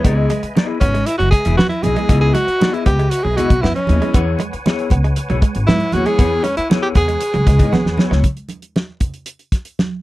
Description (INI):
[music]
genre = funk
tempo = 117 BPM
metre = 4/4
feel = straight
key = unclear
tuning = A4 = 440 Hz
[part]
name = breathy tenor saxophone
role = melody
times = 0.0-8.2 s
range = G#3 to G#4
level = -19 LUFS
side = equal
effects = none
[part]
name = mellow electric guitar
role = accompaniment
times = 0.0-8.2 s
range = B3 to E5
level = -24 LUFS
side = left 6 dB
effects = lush chorus
[part]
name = percussive tonewheel organ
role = sustained chords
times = 0.0-8.2 s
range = B4 to G#5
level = -31 LUFS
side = equal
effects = overdrive, chorus vibrato, stopped rotary speaker
[part]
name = direct-recorded clean electric guitar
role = riff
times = 0.0-8.2 s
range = F#3 to B3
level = -25 LUFS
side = right 4 dB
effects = lush chorus
[part]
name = upright bass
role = bass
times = 0.0-8.2 s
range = E1 to G#2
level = -18 LUFS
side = equal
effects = none
[part]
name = damped 70s drum kit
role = drums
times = 0.0-9.9 s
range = hi-hat, kick drum, snare drum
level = -16 LUFS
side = equal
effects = none
[part]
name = congas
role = percussion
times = 0.0-9.9 s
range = none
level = -24 LUFS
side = right 4 dB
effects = none
[sound]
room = little or no reverb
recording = dry, close 1970s-style studio recording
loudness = -14 LUFS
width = side -17 dB against mid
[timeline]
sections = 0.0-8.2 A section; 8.2-10.0 B section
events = tenor saxophone solo 0.0-8.2; drum fill 7.7-8.2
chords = 0.0 C#m9; 4.1 E6; 8.2 N.C.